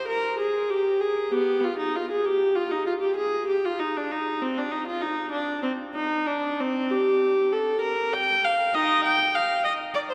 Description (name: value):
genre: classical, baroque-style suite movement for unaccompanied viola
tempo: 65 BPM (dotted quarters)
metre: 12/8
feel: rubato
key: Eb major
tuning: A4 = 439 Hz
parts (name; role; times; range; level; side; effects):
- warm viola; solo; 0.0-10.1 s; Cb4 to G5; -25 LUFS; equal; none
room: wet cathedral reverb, RT60 5.7 s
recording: heard from further back in the room, faint mains hum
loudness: -25 LUFS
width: mono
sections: 0.0-10.1 A section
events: none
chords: none